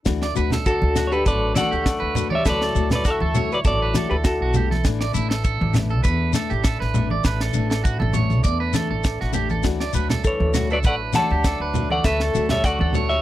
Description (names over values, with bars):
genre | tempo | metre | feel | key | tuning
highlife guitar band | 100 BPM | 4/4 | swing 53% on 16ths | unclear | A4 = 440 Hz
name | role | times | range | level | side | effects
picked steel-string acoustic guitar | accompaniment | 0.1-13.1 s | E3 to F#4 | -29 LUFS | left 10 dB | none
mellow French horn section | sustained chords | 0.1-13.2 s | E3 to E4 | -35 LUFS | left 2 dB | none
upright bass | bass | 0.1-13.2 s | A1 to E2 | -24 LUFS | equal | none
tight funk drum kit | drums | 0.1-12.8 s | kick drum, snare drum | -22 LUFS | equal | none
shekere | percussion | 0.1-13.2 s | none | -30 LUFS | left 7 dB | none
electric guitar at the edge of break-up | arpeggios | 0.2-13.2 s | E4 to D5 | -28 LUFS | right 7 dB | tape echo
congas | percussion | 0.5-13.1 s | none | -26 LUFS | right 2 dB | none
clean electric guitar | melody | 0.7-4.7, 10.2-13.2 s | F#4 to A5 | -23 LUFS | left 1 dB | tremolo
breathy tenor saxophone | second line | 0.7-4.7, 10.3-13.2 s | D3 to D4 | -31 LUFS | left 3 dB | none
room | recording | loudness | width
little or no reverb | dry, close 1970s-style studio recording | -18 LUFS | side -14 dB against mid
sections
0.1-13.2 A section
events
none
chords
0.1 Asus4